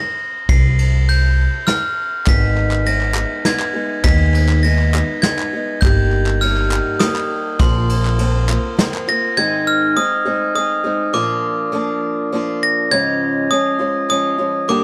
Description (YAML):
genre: indie folk with a building arrangement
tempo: 102 BPM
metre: 3/4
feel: straight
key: unclear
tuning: A4 = 437 Hz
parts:
  - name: glockenspiel with brass mallets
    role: melody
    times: 0.0-14.8 s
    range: C6 to C7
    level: -22 LUFS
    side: equal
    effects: plate reverb
  - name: upright bass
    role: bass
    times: 0.5-8.6 s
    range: G1 to Eb2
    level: -18 LUFS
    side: equal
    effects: none
  - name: soft brush drum kit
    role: drums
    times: 0.5-8.9 s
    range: kick drum, ride cymbal, snare drum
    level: -23 LUFS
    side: equal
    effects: none
  - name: picked old ladder-braced acoustic guitar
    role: accompaniment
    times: 2.3-14.8 s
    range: G2 to Ab4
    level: -23 LUFS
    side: equal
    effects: plate reverb
  - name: group handclap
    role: percussion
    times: 2.3-9.2 s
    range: none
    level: -29 LUFS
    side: equal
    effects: none
room: light reverb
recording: dark, warm production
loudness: -17 LUFS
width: mono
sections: 0.0-9.4 A section; 9.4-14.8 B section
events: none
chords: 0.5 C5; 2.3 Abm; 5.8 Eb/G; 7.6 Bbsus2; 9.4 Ab; 11.1 Bb; 12.9 Db/Ab